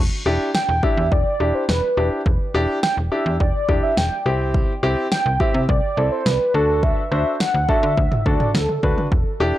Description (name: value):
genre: synth-pop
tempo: 105 BPM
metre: 4/4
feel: straight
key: unclear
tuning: A4 = 440 Hz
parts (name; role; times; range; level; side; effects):
- slap-like FM bass; bass; 0.0-9.5 s; E1 to D3; -22 LUFS; equal; none
- clear concert grand piano; accompaniment; 0.3-9.6 s; C4 to C5; -23 LUFS; left 1 dB; none
- warm velvety synth lead; melody; 0.5-9.0 s; A4 to G5; -22 LUFS; right 1 dB; chorus, analog delay
- deep house drum kit; drums; 0.5-9.2 s; kick drum, snare drum, toms; -21 LUFS; equal; none
room: digital ambience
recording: dry, gritty hardware recording, cassette tape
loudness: -17 LUFS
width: side -14 dB against mid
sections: 0.0-9.6 A section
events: none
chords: 0.0 Em7; 4.3 C; 6.5 D